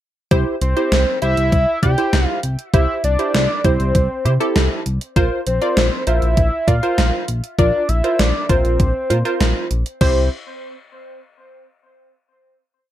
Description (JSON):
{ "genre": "synth-pop", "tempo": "99 BPM", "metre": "4/4", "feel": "straight", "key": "C mixolydian", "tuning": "A4 = 440 Hz", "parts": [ { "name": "funky polysynth comp", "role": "accompaniment", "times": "0.3-10.3 s", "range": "E4 to D5", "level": "-21 LUFS", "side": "right 2 dB", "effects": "chorus" }, { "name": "smooth gliding synth bass", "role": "bass", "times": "0.3-10.3 s", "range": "Bb1 to C3", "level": "-18 LUFS", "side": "equal", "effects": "none" }, { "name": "gated 80s digital drum machine", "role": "drums", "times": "0.3-10.2 s", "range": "crash cymbal, hi-hat, kick drum, snare drum", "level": "-19 LUFS", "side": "equal", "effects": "gated reverb, gated reverb snare, overdrive" }, { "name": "fat analog lead", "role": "melody", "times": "0.6-10.3 s", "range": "C5 to G5", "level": "-21 LUFS", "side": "equal", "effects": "tape echo" } ], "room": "light reverb", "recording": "none", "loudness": "-15 LUFS", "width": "side -12 dB against mid", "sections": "0.3-10.0 verse; 10.0-12.4 final chord", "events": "none", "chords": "0.3 C; 5.2 Bbsus2; 10.0 C", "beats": "| 0.31 0.92 1.53 2.13 | 2.74 3.34 3.95 4.56 | 5.16 5.77 6.37 6.98 | 7.59 8.19 8.80 9.40 | 10.01" }